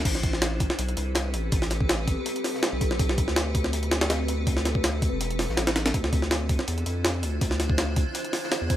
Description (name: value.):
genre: drum and bass, jungle.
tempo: 163 BPM.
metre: 4/4.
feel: straight.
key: A minor.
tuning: A4 = 439 Hz.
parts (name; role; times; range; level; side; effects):
granular cloud pad; sustained chords; 0.0-8.8 s; C4 to C5; -32 LUFS; equal; built-in reverb.
saturated sub bass; bass; 0.0-8.8 s; E1 to F2; -28 LUFS; equal; none.
crunchy breakbeat drum kit; drums; 0.1-8.8 s; hi-hat, snare drum; -37 LUFS; left 4 dB; high-pass filter on hats, high-pass filter on snare, high-pass filter on room.
jungle sampler-style drum kit; drums; 0.1-8.8 s; crash cymbal, hi-hat, kick drum, snare drum; -25 LUFS; equal; none.
room: small room ambience.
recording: none.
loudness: -23 LUFS.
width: side -12 dB against mid.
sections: 0.1-8.8 A section.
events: drop 0.1-8.8.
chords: 0.1 Am9; 5.9 Dm9.